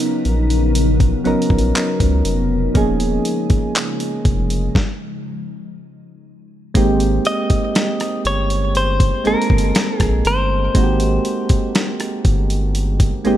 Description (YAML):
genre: contemporary R&B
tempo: 60 BPM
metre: 4/4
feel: straight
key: Ab major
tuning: A4 = 441 Hz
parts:
  - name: soft electric-piano-like synth keys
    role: accompaniment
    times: 0.0-13.4 s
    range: F3 to A#4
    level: -20 LUFS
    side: right 2 dB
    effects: chorus
  - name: glassy FM pad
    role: sustained chords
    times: 0.0-4.7 s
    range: C#3 to A#4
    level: -24 LUFS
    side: left 2 dB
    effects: ensemble chorus, built-in reverb, phaser, sidechain pumping
  - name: dusty soul sampler-style drum kit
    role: drums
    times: 0.0-13.4 s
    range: handclaps, hi-hat, kick drum, rim click, snare drum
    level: -18 LUFS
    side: equal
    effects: none
  - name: saturated sub bass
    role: bass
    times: 0.3-13.3 s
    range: Eb1 to C#2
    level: -19 LUFS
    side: equal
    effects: none
  - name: direct-recorded clean electric guitar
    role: melody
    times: 7.3-11.7 s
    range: Bb4 to Eb5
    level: -21 LUFS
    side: left 1 dB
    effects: tape echo
room: little or no reverb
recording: none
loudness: -15 LUFS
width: side -12 dB against mid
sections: 0.0-6.8 A section; 6.8-13.4 B section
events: stop 4.8-6.8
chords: 0.0 Bmaj9; 2.8 Eb9sus4; 6.8 Abmaj9